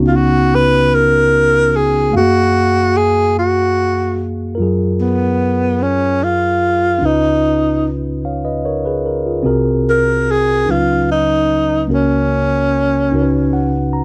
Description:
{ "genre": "slow gospel", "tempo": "49 BPM (dotted quarters)", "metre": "6/8", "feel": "straight", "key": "F# major", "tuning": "A4 = 440 Hz", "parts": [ { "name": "mellow tine electric piano", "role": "accompaniment", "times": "0.0-14.0 s", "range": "B#1 to A#5", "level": "-18 LUFS", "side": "equal", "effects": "none" }, { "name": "breathy tenor saxophone", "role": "melody", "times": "0.1-13.9 s", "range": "B3 to B4", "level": "-16 LUFS", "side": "equal", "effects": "none" } ], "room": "little or no reverb", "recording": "dry, close 1970s-style studio recording", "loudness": "-15 LUFS", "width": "mono", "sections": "0.0-4.6 A section; 4.6-14.0 B section", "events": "tine electric piano fill 13.1-14.0", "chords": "0.0 C#9sus4; 2.1 F#maj9; 7.0 C#9; 9.5 G#9/B#; 10.7 C#9sus4; 11.9 F#/C#; 13.1 C#9sus4" }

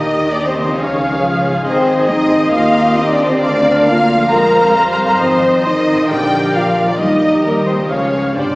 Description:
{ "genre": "cinematic, heroic adventure film score", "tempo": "134 BPM", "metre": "4/4", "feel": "straight", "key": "unclear", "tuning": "A4 = 440 Hz", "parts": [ { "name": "warm symphonic violin section", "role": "melody", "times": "0.0-8.6 s", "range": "Bb4 to Bb5", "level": "-21 LUFS", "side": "left 1 dB", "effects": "none" }, { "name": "warm symphonic violin section", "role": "second line", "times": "0.0-8.6 s", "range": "Bb4 to Bb5", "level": "-19 LUFS", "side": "left 1 dB", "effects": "none" }, { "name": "rich symphonic viola section", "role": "accompaniment", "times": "0.0-8.6 s", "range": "G4 to F5", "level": "-19 LUFS", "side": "equal", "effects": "none" }, { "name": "dark French horn section", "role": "sustained chords", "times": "0.0-8.6 s", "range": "Bb3 to Bb4", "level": "-16 LUFS", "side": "equal", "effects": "none" }, { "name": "concert harp", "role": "arpeggios", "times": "0.0-8.6 s", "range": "F2 to Db5", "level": "-25 LUFS", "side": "left 1 dB", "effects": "none" }, { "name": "rich symphonic cello section", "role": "bass", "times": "0.0-8.6 s", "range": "D3 to C4", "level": "-20 LUFS", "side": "equal", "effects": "none" }, { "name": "rich symphonic double bass section", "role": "bass", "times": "0.0-8.4 s", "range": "G1 to F2", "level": "-25 LUFS", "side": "equal", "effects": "none" }, { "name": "timpani", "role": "percussion", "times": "8.4-8.6 s", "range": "G2", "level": "-28 LUFS", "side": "equal", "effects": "none" } ], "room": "wet scoring stage reverb, RT60 1.8 s", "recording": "heard from further back in the room, small speaker sound", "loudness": "-11 LUFS", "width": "side -22 dB against mid", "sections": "0.0-8.6 A section", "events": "timpani fill 8.4", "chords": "0.0 Eb; 0.8 Db; 1.7 Ab; 2.5 Eb; 3.4 Bb/D; 4.3 Fm; 5.2 Ab; 6.1 Bb; 7.0 Eb; 7.9 Db" }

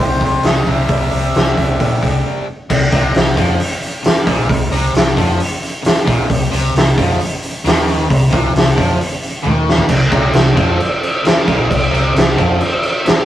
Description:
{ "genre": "blues rock power trio and southern rock", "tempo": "133 BPM", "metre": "4/4", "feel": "straight", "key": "unclear", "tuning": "A4 = 445 Hz", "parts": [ { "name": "bright harmonica", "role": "melody", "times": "0.0-2.2 s", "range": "C5 to E5", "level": "-20 LUFS", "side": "left 1 dB", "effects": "overdrive" }, { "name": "distorted electric guitar", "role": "riff", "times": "0.0-13.1 s", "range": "Bb2 to C4", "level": "-19 LUFS", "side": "equal", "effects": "overdrive" }, { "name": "hollow-body short-scale fingered electric bass", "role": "bass", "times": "0.0-13.1 s", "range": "Bb1 to Bb2", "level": "-18 LUFS", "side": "equal", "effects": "none" }, { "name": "oversized low-tuned drum kit", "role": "drums", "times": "0.2-13.2 s", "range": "crash cymbal, hi-hat, kick drum, snare drum, toms", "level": "-14 LUFS", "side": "equal", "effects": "none" } ], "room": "light reverb", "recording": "rough rehearsal-room recording, tube saturation", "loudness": "-12 LUFS", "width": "side -12 dB against mid", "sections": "0.0-2.7 A section; 2.7-9.9 B section; 9.9-13.2 B section", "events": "break 2.2-2.7; drum fill 9.4-9.9", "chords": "0.0 C; 2.7 Bbsus4 (rootless); 9.9 Bbsus2" }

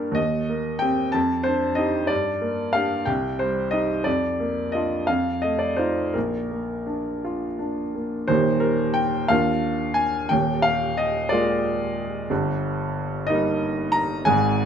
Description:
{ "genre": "classical, romantic character piece for solo piano", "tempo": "55-64 BPM (dotted quarters)", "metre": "6/8", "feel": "rubato", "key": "Bb major, Eb major from 8.3 s", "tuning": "A4 = 440 Hz", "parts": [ { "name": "bright upright piano", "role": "solo", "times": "0.0-14.7 s", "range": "Eb1 to Bb5", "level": "-21 LUFS", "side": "equal", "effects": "none" } ], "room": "moderate recital hall reverb, RT60 1.4 s", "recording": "close, detailed microphones", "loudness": "-21 LUFS", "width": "side -8 dB against mid", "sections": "0.0-8.3 A section; 8.3-14.7 B section", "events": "none", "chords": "0.2 Cm7/Eb; 1.1 Fsus2; 2.1 Gm; 3.1 Cm; 4.1 Bb/F; 5.1 F7; 6.1 Bb; 8.3 Eb; 9.3 Bb/Eb; 10.3 Bb7/Eb; 12.3 Eb/G" }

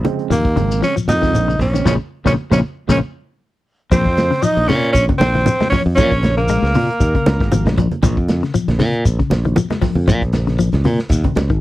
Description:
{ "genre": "afrobeat", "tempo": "117 BPM", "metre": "4/4", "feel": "swing 55% on 16ths", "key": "Bb minor", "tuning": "A4 = 440 Hz", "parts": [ { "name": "overdriven tine electric piano", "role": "accompaniment", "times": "0.0-3.0 s", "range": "Db3 to C4", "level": "-24 LUFS", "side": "right 11 dB", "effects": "none" }, { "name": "modern bright fingered electric bass", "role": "bass", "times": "0.0-11.6 s", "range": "Ab1 to Bb2", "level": "-18 LUFS", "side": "equal", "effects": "none" }, { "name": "crunchy breakbeat drum kit", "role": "drums", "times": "0.0-11.6 s", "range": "hi-hat, kick drum, snare drum", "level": "-20 LUFS", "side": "equal", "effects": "none" }, { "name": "congas", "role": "percussion", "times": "0.0-11.5 s", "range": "none", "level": "-22 LUFS", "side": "right 3 dB", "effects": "none" }, { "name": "semi-hollow electric guitar", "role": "arpeggios", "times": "0.1-11.6 s", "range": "Bb2 to Ab3", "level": "-20 LUFS", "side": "left 5 dB", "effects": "tremolo" }, { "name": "raspy tenor saxophone", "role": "melody", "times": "0.3-7.7 s", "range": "Bb3 to Eb4", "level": "-19 LUFS", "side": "equal", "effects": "none" }, { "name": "shekere", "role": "percussion", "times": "0.3-11.5 s", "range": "none", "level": "-24 LUFS", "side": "left 2 dB", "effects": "none" }, { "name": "bright alto saxophone", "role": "second line", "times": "3.9-7.7 s", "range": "Bb4 to Eb5", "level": "-23 LUFS", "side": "right 3 dB", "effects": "none" } ], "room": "little or no reverb", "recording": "dry, close 1970s-style studio recording", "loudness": "-14 LUFS", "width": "side -16 dB against mid", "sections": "0.0-3.9 A section; 3.9-11.6 B section", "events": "band accent 1.9-3.9; drum fill 3.5-3.9", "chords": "0.0 Bbm9; 3.9 Bbmadd9" }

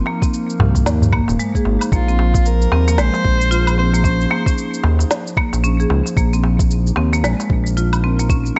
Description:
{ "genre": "organic downtempo", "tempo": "113 BPM", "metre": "4/4", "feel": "swing 60% on 16ths", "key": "unclear", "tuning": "A4 = 440 Hz", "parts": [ { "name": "warbly tape-like pad", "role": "sustained chords", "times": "0.0-8.6 s", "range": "F3 to Bb4", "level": "-27 LUFS", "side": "equal", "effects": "chorus, built-in reverb, sidechain pumping" }, { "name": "marimba with hard mallets", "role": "arpeggios", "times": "0.1-8.6 s", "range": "Ab3 to Ab4", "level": "-25 LUFS", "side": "equal", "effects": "digital delay" }, { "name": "darbuka", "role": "percussion", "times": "0.1-8.6 s", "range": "none", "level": "-24 LUFS", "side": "equal", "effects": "none" }, { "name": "electronic kick drum", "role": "drums", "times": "0.2-8.4 s", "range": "none", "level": "-20 LUFS", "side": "equal", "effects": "overdrive" }, { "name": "electronic shaker, snare drum and woodblock", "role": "drums", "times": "0.2-8.5 s", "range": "none", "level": "-27 LUFS", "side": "equal", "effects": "overdrive" }, { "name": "smooth synth bass", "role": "bass", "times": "0.6-8.5 s", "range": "Eb1 to Eb2", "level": "-19 LUFS", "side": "equal", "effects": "sidechain pumping" }, { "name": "rich kamancheh", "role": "melody", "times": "1.9-4.8 s", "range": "F4 to C5", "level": "-24 LUFS", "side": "equal", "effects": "digital delay" } ], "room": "light reverb, small room reverb", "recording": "nothing above 7.9 kHz", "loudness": "-17 LUFS", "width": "mono", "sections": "0.0-8.6 A section", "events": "none", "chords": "0.0 Abadd9; 1.9 Bb7sus2" }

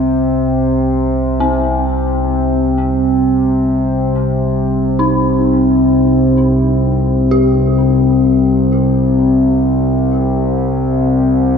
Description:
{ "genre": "dark ambient drone", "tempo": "free time", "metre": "none", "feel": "none", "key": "C minor", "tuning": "A4 = 440 Hz", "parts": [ { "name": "analog drone", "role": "drone", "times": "0.0-11.6 s", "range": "C2 to C3", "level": "-12 LUFS", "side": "left 1 dB", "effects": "chorus" }, { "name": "dark detuned synth bell", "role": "arpeggios", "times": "1.4-11.6 s", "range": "C4 to G4", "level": "-22 LUFS", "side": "right 2 dB", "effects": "chorus, phaser, tape echo" } ], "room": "wet cathedral reverb, RT60 5.8 s", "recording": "small room ambience", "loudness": "-11 LUFS", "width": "side -6 dB against mid", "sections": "0.0-11.6 A section", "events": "none", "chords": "0.0 Cm; 8.9 N.C." }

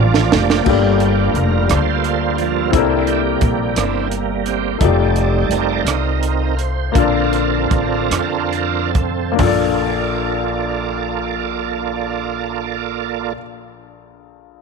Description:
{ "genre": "slow gospel", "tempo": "45-58 BPM (dotted quarters)", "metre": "6/8", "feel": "straight", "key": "Bb major", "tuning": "A4 = 440 Hz", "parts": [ { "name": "clear baby grand piano", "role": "accompaniment", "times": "0.0-14.6 s", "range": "Bb1 to A5", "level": "-21 LUFS", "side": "left 13 dB", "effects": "none" }, { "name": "bright tonewheel organ", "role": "sustained chords", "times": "0.0-13.3 s", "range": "F3 to D5", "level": "-20 LUFS", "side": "right 12 dB", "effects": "slow rotary speaker, overdrive, chorus vibrato" }, { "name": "upright bass", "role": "bass", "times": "0.0-13.3 s", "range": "F1 to F2", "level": "-21 LUFS", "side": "left 1 dB", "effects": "none" }, { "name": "crisp fusion drum kit", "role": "drums", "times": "0.1-9.6 s", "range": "crash cymbal, hi-hat, kick drum, rim click, snare drum, toms", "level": "-19 LUFS", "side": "right 3 dB", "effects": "none" } ], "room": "light reverb, studio ambience", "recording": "1960s-style stereo with parts hard left and right", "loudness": "-15 LUFS", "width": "side -5 dB against mid", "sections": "0.7-9.4 A section; 9.4-14.6 B section", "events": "drum fill 0.0-0.7; tonewheel organ solo 0.7-9.4; slowing down 4.8-9.4", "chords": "0.0 Bbmaj7; 0.7 Gm9; 2.7 C13; 4.8 F13; 7.0 Bbmaj7" }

